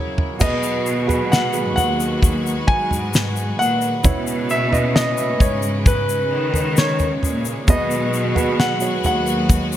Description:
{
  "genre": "pop ballad",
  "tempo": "66 BPM",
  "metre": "4/4",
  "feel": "straight",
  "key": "unclear",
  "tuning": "A4 = 436 Hz",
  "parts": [
    { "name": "clear concert grand piano", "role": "melody", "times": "0.0-9.8 s", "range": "B4 to G#5", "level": "-23 LUFS", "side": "left 1 dB", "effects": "none" },
    { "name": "dark baby grand piano", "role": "accompaniment", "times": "0.0-9.8 s", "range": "B2 to E5", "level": "-26 LUFS", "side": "right 5 dB", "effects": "none" },
    { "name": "warm studio string section", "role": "sustained chords", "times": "0.0-9.8 s", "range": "C#3 to B4", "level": "-26 LUFS", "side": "left 1 dB", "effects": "none" },
    { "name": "damped 70s drum kit", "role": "drums", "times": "0.2-9.7 s", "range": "crash cymbal, kick drum, snare drum, toms", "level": "-18 LUFS", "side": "equal", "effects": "none" },
    { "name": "clear symphonic cello section", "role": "bass", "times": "0.4-9.8 s", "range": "D#2 to D#3", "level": "-23 LUFS", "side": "equal", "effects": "none" },
    { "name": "tube shaker", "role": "percussion", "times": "0.4-9.8 s", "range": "none", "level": "-31 LUFS", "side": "left 11 dB", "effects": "none" }
  ],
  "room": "light reverb, small room ambience",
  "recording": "none",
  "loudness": "-16 LUFS",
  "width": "side -12 dB against mid",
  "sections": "0.4-9.8 A section",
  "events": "break 0.0-0.4; drum fill 0.0-0.4",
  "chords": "0.4 G#m7; 4.0 C#m7; 7.7 G#m7",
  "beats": "| 0.41 1.31 2.22 3.13 | 4.04 4.95 5.86 6.77 | 7.68 8.59 9.50"
}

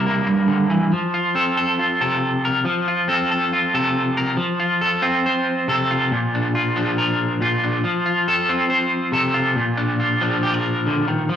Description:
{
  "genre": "highlife",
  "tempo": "139 BPM",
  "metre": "4/4",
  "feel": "swing 54% on 16ths",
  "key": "unclear",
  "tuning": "A4 = 440 Hz",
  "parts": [
    { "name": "electric guitar at the edge of break-up", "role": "solo", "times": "0.0-11.4 s", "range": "G2 to C5", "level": "-17 LUFS", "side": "equal", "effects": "harmonic tremolo" }
  ],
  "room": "moderate stone room reverb, RT60 1.1 s",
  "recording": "band playing live in one room",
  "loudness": "-17 LUFS",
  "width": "side -9 dB against mid",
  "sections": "0.0-4.4 A section; 4.4-11.4 B section",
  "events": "none",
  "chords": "0.0 C7; 0.9 F; 6.1 Bb; 7.8 F; 9.6 Bb",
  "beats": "0.06 0.49 | 0.92 1.35 1.79 2.22 | 2.65 3.08 3.52 3.95 | 4.38 4.81 5.24 5.68 | 6.11 6.54 6.97 7.40 | 7.83 8.27 8.70 9.13 | 9.56 9.99 10.43 10.86 | 11.29"
}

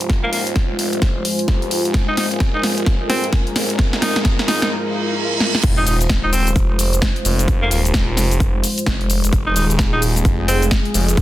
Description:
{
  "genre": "bass house",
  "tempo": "130 BPM",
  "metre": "4/4",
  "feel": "swing 61% on 16ths",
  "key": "F minor",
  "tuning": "A4 = 439 Hz",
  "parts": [
    { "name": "dark analog pad", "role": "sustained chords", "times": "0.0-11.2 s", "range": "Ab3 to C5", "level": "-24 LUFS", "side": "left 1 dB", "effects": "chorus, sidechain pumping" },
    { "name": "phased detuned saw bass", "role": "bass", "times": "0.0-11.2 s", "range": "Eb1 to Ab1", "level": "-21 LUFS", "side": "equal", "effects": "phaser, tube saturation, sidechain pumping, high-pass filter" },
    { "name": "house drum kit", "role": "drums", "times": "0.0-11.2 s", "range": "crash cymbal, hi-hat, shaker, snare drum", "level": "-21 LUFS", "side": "equal", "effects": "studio reverb" },
    { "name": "riser, reverse cymbal and sub drop", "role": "sound effects", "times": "3.5-7.5 s", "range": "none", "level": "-28 LUFS", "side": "right 2 dB", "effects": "none" },
    { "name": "deep dark ambient pad", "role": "texture", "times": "0.0-4.7 s", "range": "F4 to Ab5", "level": "-28 LUFS", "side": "equal", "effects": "chorus, built-in reverb, sidechain pumping" },
    { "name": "electronic kick drum", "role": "drums", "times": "0.1-11.2 s", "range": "none", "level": "-17 LUFS", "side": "equal", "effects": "studio reverb" },
    { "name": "edgy alto saxophone", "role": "melody", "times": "0.2-10.6 s", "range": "Bb3 to Eb4", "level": "-23 LUFS", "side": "equal", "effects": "tape echo" }
  ],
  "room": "light reverb",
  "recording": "dense, heavily limited modern master",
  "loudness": "-15 LUFS",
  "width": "side -15 dB against mid",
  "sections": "0.0-5.6 A section; 5.6-11.2 B section",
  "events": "build-up 0.0-5.6; drum fill 0.0-4.7, 5.4; riser 3.5-5.6; reverse cymbal 4.7-5.6; drop 5.6-11.2; impact 5.6-7.5",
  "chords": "0.0 Fm",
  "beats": "| 0.10 0.56 1.02 1.48 | 1.94 2.40 2.87 3.33 | 3.79 4.25 4.71 5.17 | 5.63 6.10 6.56 7.02 | 7.48 7.94 8.40 8.87 | 9.33 9.79 10.25 10.71 | 11.17"
}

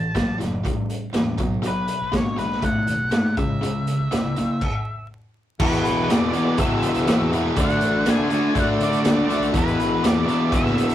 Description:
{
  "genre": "classic rock",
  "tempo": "122 BPM",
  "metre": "4/4",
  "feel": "straight",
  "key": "E mixolydian from 5.6 s",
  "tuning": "A4 = 439 Hz",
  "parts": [
    { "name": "octave-fuzz lead guitar", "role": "melody", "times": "0.0-10.9 s", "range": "B4 to A5", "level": "-27 LUFS", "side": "equal", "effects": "distortion" },
    { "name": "overdriven electric guitar", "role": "riff", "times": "0.0-10.9 s", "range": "E2 to D4", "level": "-23 LUFS", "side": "left 2 dB", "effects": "none" },
    { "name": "tight distorted guitar", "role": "riff", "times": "0.0-10.9 s", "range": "E2 to G#4", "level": "-30 LUFS", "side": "right 3 dB", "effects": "distortion" },
    { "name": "growling fingered electric bass", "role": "bass", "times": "0.0-10.9 s", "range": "F#1 to D3", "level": "-31 LUFS", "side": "equal", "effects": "overdrive" },
    { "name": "raw garage drum kit", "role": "drums", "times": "0.1-10.9 s", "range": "crash cymbal, hi-hat, kick drum, snare drum", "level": "-24 LUFS", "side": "equal", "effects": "none" },
    { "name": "tonewheel organ", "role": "sustained chords", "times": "5.6-10.9 s", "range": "G#3 to E5", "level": "-32 LUFS", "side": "right 1 dB", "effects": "none" },
    { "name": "biting overdriven guitar", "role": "riff", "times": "5.6-10.9 s", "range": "E2 to D4", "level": "-31 LUFS", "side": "right 1 dB", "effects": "none" }
  ],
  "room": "moderate booth ambience, RT60 0.2 s",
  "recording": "rough rehearsal-room recording, tube saturation, vinyl crackle",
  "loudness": "-19 LUFS",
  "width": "side -12 dB against mid",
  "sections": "0.0-5.6 A section; 5.6-10.9 B section",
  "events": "stop 4.6-5.6",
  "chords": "0.0 A5; 1.4 B5; 3.4 C#m; 5.6 E; 7.6 D; 9.5 E",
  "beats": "0.15 0.65 1.15 | 1.64 2.14 2.63 3.13 | 3.62 4.12 4.62 5.11 | 5.60 6.10 6.59 7.08 | 7.57 8.06 8.56 9.05 | 9.54 10.03 10.53"
}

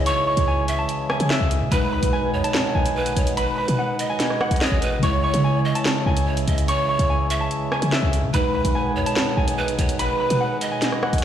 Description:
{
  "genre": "hip hop, drill",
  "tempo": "145 BPM",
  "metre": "4/4",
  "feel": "half-time",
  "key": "unclear",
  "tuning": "A4 = 441 Hz",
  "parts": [
    { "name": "concert harp", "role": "melody", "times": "0.0-11.2 s", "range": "D#4 to C#6", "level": "-26 LUFS", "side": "left 1 dB", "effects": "digital delay" },
    { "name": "breathy mellow pan flute", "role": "second line", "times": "0.0-11.2 s", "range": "B4 to E5", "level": "-27 LUFS", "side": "right 6 dB", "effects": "digital delay" },
    { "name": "mellow tine electric piano", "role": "accompaniment", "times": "0.0-11.2 s", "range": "B2 to C#5", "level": "-26 LUFS", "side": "equal", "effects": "medium stereo tremolo" },
    { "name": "pedal harmonium", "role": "sustained chords", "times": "0.0-11.2 s", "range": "C#3 to F#4", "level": "-30 LUFS", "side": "left 2 dB", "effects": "none" },
    { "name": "short 808-style bass", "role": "bass", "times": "0.0-11.2 s", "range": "A1 to C#3", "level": "-23 LUFS", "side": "equal", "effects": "none" },
    { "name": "drill drum kit", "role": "drums", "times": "0.1-11.2 s", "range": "hi-hat, rim click, snare drum", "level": "-26 LUFS", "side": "equal", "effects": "none" }
  ],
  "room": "little or no reverb",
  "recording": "played on a big sound system in a bare room, large studio reverb",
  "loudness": "-19 LUFS",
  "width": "side -10 dB against mid",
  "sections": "0.0-11.2 A section",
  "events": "none",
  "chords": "0.0 C#m; 1.7 B6; 5.0 C#m; 8.3 B6",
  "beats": "| 0.06 0.47 0.89 1.30 | 1.72 2.13 2.54 2.96 | 3.37 3.79 4.20 4.61 | 5.03 5.44 5.86 6.27 | 6.68 7.10 7.51 7.92 | 8.34 8.75 9.16 9.58 | 9.99 10.41 10.82 11.23"
}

